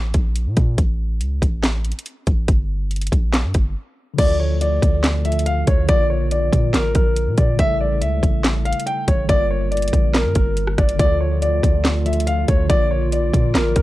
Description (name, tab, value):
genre	hip hop, trap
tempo	141 BPM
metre	4/4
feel	half-time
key	D harmonic minor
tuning	A4 = 438 Hz
part	long sustained 808-style bass	bass	0.0-13.8 s	G1 to Bb2	-20 LUFS	equal	none
part	trap drum kit	drums	0.1-13.8 s	crash cymbal, handclaps, hi-hat, kick drum, rim click, snare drum	-19 LUFS	equal	none
part	mellow tine electric piano	accompaniment	4.1-13.8 s	C#3 to Bb4	-26 LUFS	equal	medium stereo tremolo
part	dark grand piano	melody	4.2-13.8 s	Bb4 to G5	-22 LUFS	left 1 dB	analog delay
part	dark woodwind section	sustained chords	11.0-13.8 s	D3 to D5	-30 LUFS	right 2 dB	none
room	little or no reverb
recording	dry, gritty hardware recording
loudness	-16 LUFS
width	side -17 dB against mid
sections	0.0-4.2 A section; 4.2-13.8 B section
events	break 0.0-4.2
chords	0.0 N.C.; 2.5 Gm; 4.2 Dm; 5.9 Bb; 7.6 A7; 9.3 Gm7; 11.0 Dm; 12.7 Bb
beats	0.35 | 0.78 1.21 1.63 2.06 | 2.48 2.91 3.33 3.76 | 4.18 4.61 5.04 5.46 | 5.89 6.31 6.74 7.16 | 7.59 8.02 8.44 8.87 | 9.29 9.72 10.14 10.57 | 10.99 11.42 11.85 12.27 | 12.70 13.12 13.55